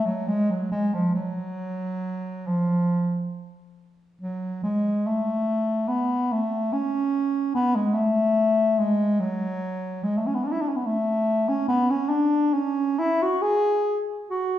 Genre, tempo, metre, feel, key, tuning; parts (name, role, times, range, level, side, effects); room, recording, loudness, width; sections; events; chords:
classical, free, expressive piece for unaccompanied bass clarinet; 71 BPM; 4/4; uneven beats, rubato; F# minor; A4 = 440 Hz
mellow bass clarinet; solo; 0.0-14.6 s; E#3 to G#4; -22 LUFS; equal
wet recital hall reverb, RT60 1.4 s; heard from further back in the room, nothing above 10.6 kHz; -22 LUFS; side -12 dB against mid
0.0-14.6 A section